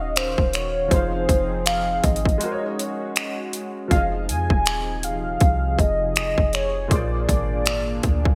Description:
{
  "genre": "contemporary R&B",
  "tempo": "80 BPM",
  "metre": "4/4",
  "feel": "swing 58% on 16ths",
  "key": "unclear",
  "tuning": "A4 = 440 Hz",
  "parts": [
    { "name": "warm velvety synth lead", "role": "melody", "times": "0.0-8.3 s", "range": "C5 to Ab5", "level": "-27 LUFS", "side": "equal", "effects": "chorus, digital delay" },
    { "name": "clear grand piano", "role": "accompaniment", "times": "0.0-8.3 s", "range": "Bb2 to F5", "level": "-34 LUFS", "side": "equal", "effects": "ensemble chorus" },
    { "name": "warm analog pad", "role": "sustained chords", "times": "0.0-8.3 s", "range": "C3 to F5", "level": "-33 LUFS", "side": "equal", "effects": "chorus, tremolo" },
    { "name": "clean 808-style bass", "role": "bass", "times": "0.0-8.3 s", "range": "Eb1 to F2", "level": "-28 LUFS", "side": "equal", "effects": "none" },
    { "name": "trap drum kit", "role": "drums", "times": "0.2-8.3 s", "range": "finger snaps, hi-hat, kick drum", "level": "-24 LUFS", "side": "equal", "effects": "overdrive, gated reverb" }
  ],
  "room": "light reverb",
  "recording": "bright 1980s-style digital production",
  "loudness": "-22 LUFS",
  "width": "mono",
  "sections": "0.0-3.9 A section; 3.9-8.3 B section",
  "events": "break 2.4-3.9",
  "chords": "0.0 Ebm9; 0.9 Fm7; 2.4 Ab9sus4; 3.9 Fm7; 6.9 Bb7"
}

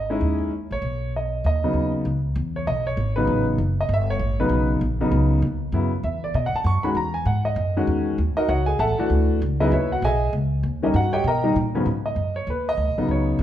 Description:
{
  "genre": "jazz piano trio",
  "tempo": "196 BPM",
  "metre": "4/4",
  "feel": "swing 61% on 8ths",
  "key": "G# minor",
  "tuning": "A4 = 440 Hz",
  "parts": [
    { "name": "clear concert grand piano", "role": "melody", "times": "0.0-13.4 s", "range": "G#2 to C#6", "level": "-22 LUFS", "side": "equal", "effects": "none" },
    { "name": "upright bass", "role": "bass", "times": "0.0-13.4 s", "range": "F#1 to B2", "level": "-23 LUFS", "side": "equal", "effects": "none" }
  ],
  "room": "moderate large studio reverb, RT60 1.2 s",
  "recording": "heard from further back in the room",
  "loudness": "-20 LUFS",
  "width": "side -11 dB against mid",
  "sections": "0.0-2.1 A section; 2.1-11.9 B section; 11.9-13.4 A section",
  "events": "none",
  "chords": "0.0 G#m (rootless); 2.1 C#m7; 3.3 A9; 4.5 Bmaj7; 5.7 F#5; 6.3 B; 7.0 Emaj9; 8.2 D#m7; 8.8 Dadd9; 9.4 C#m9; 10.6 D#7; 11.9 G#m7"
}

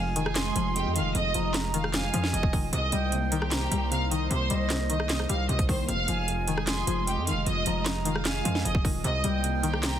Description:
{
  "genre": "hip hop, trap",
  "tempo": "152 BPM",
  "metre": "4/4",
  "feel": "half-time",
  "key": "F minor",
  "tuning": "A4 = 441 Hz",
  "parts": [
    { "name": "silver concert flute", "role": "second line", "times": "0.0-10.0 s", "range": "Eb5 to C6", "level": "-35 LUFS", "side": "right 3 dB", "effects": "digital delay" },
    { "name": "string-like resonator pluck", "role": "accompaniment", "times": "0.0-10.0 s", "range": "F2 to G3", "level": "-32 LUFS", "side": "left 4 dB", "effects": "chorus, low-pass filter" },
    { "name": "airy breathy pad", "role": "sustained chords", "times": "0.0-10.0 s", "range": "Ab3 to Eb5", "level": "-36 LUFS", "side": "equal", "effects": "chorus, phaser" },
    { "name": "distorted 808-style bass", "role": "bass", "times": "0.0-10.0 s", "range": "Eb1 to F2", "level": "-30 LUFS", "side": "equal", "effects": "distortion" },
    { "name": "bright studio violin section", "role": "melody", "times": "0.2-10.0 s", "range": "G4 to F6", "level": "-32 LUFS", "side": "right 1 dB", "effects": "low-pass filter" },
    { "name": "trap drum kit", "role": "drums", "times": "0.2-9.9 s", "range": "handclaps, hi-hat, kick drum, rim click, snare drum", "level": "-29 LUFS", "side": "right 1 dB", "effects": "overdrive" }
  ],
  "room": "little or no reverb",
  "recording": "dense, heavily limited modern master",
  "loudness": "-24 LUFS",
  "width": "side -10 dB against mid",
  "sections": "0.0-10.0 A section",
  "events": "none",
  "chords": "0.0 Fm7; 2.7 Cm7; 5.9 Fm7; 9.0 Cm7"
}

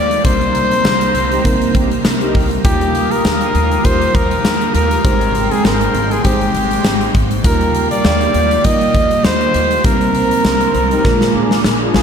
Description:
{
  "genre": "1980s-style pop",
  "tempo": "100 BPM",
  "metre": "4/4",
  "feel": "swing 55% on 16ths",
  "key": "Eb major",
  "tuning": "A4 = 439 Hz",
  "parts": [
    { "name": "clear flugelhorn", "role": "melody", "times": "0.0-12.0 s", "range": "G4 to Eb5", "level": "-17 LUFS", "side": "equal", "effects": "digital delay, slapback echo" },
    { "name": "mellow FM electric piano", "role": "accompaniment", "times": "0.0-12.0 s", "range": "G3 to C5", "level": "-20 LUFS", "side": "right 1 dB", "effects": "chorus, slapback echo" },
    { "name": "raw garage guitar", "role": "accompaniment", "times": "0.0-12.0 s", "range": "Bb2 to Ab4", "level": "-26 LUFS", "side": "right 4 dB", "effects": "none" },
    { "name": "sweeping resonant pad", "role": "sustained chords", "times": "0.0-12.0 s", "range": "Ab3 to Eb6", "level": "-25 LUFS", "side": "left 1 dB", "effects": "chorus" },
    { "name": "upright bass", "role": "bass", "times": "0.0-12.0 s", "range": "Ab1 to Eb2", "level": "-21 LUFS", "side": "equal", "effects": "none" },
    { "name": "huge arena drum kit", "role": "drums", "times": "0.1-12.0 s", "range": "hi-hat, kick drum, snare drum, tambourine", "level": "-16 LUFS", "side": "equal", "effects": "none" },
    { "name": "mellow synth brass", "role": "stabs", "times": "1.3-2.5, 10.9-12.0 s", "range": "C4 to Bb4", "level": "-23 LUFS", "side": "left 2 dB", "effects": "chorus, slapback echo" }
  ],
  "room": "wet recital hall reverb, RT60 1.7 s, small room ambience",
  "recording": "big arena sound",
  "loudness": "-12 LUFS",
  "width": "side -7 dB against mid",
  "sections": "0.0-12.0 A section",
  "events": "band accent 0.2-2.6, 9.8-12.0; drum fill 11.0-12.0",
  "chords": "0.2 Cm7; 2.6 Ebadd9; 5.0 Abmaj7; 7.4 Ebadd9; 9.8 Cm7; 11.0 Bb7"
}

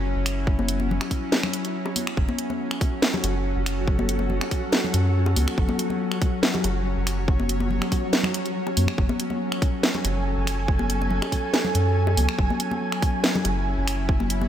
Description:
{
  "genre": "deep dubstep",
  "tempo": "141 BPM",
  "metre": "4/4",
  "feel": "half-time",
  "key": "F# minor",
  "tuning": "A4 = 439 Hz",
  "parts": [
    { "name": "bowed-like drone", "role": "sustained chords", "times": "0.0-14.5 s", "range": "F#3 to C#5", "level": "-28 LUFS", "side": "left 1 dB", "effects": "built-in reverb, vintage 12-bit sampler grit" },
    { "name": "soft dub sub bass", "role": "bass", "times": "0.0-14.5 s", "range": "F#1 to F#2", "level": "-24 LUFS", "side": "equal", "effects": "none" },
    { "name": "garage drum kit", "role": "drums", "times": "0.3-14.4 s", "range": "finger snaps, hi-hat, snare drum", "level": "-26 LUFS", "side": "equal", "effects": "none" },
    { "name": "electronic kick drum", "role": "drums", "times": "0.5-14.2 s", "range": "none", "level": "-23 LUFS", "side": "equal", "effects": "none" },
    { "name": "congas and bongos", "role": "percussion", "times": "0.6-14.5 s", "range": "none", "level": "-30 LUFS", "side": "left 3 dB", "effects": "dub echo" },
    { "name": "flickering grainy texture", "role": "texture", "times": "2.6-14.5 s", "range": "F#3 to G#5", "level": "-31 LUFS", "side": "right 2 dB", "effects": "built-in reverb" }
  ],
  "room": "moderate echo chamber reverb, RT60 2.1 s",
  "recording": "none",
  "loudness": "-21 LUFS",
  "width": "side -10 dB against mid",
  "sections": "0.0-14.5 A section",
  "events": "break 1.7-2.2",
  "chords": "0.0 F#m"
}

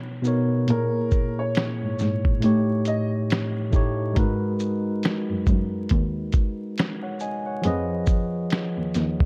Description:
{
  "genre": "lo-fi hip hop",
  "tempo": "69 BPM",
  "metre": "4/4",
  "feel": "swing 59% on 16ths",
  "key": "unclear",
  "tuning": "A4 = 440 Hz",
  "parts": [
    { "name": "tine electric piano", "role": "accompaniment", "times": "0.0-9.3 s", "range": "A2 to G#5", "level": "-28 LUFS", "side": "equal", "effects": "low-pass filter" },
    { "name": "lo-fi sampler-style drum kit", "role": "drums", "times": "0.2-9.3 s", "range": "finger snaps, hi-hat, kick drum, shaker, snare drum", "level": "-26 LUFS", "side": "equal", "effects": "vintage 12-bit sampler grit" },
    { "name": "clear upright piano", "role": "melody", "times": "0.7-3.1 s", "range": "A#4 to D#5", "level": "-33 LUFS", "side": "equal", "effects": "low-pass filter, analog delay" },
    { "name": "muted cello", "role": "bass", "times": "0.7-9.3 s", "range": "D#2 to A#2", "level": "-29 LUFS", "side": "equal", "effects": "none" }
  ],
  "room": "light reverb, digital ambience",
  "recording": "dark, warm production, vinyl crackle",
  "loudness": "-24 LUFS",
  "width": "mono",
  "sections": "0.0-9.3 A section",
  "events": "break 0.0-0.7",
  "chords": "0.0 Bmaj9; 0.7 A#m7b5; 2.4 A7#11; 4.2 G#m9; 7.6 Fm7b5"
}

